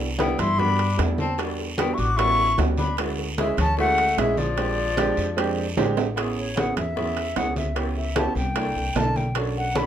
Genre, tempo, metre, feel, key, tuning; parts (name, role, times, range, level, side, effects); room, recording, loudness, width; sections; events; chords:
Afro-Cuban jazz; 151 BPM; 4/4; straight; A major; A4 = 439 Hz
clear baby grand piano; accompaniment; 0.0-9.9 s; G3 to A4; -27 LUFS; right 4 dB
upright bass; bass; 0.0-9.9 s; A1 to G2; -27 LUFS; left 1 dB
bongos; percussion; 0.0-9.9 s; -33 LUFS; left 5 dB
breathy silver concert flute; melody; 0.2-9.9 s; C#5 to D6; -25 LUFS; left 2 dB
bright tenor saxophone; second line; 0.2-5.8 s; F3 to F#4; -30 LUFS; left 6 dB
congas; percussion; 0.2-9.9 s; -30 LUFS; left 1 dB
guiro; percussion; 0.2-9.9 s; -38 LUFS; right 5 dB
timbales; percussion; 0.2-9.9 s; -29 LUFS; right 9 dB
light reverb; minimal, uncompressed stereo recording; -21 LUFS; side -10 dB against mid
0.0-6.2 A section; 6.2-9.9 B section
drum fill 5.8-6.2; flute solo 6.2-9.9
0.0 Cmaj9; 1.4 Em9; 2.2 A13; 3.0 Dmaj9#11; 4.6 Bb13; 6.2 Amaj9; 7.8 C#m7b5; 8.6 C13; 9.4 Bm9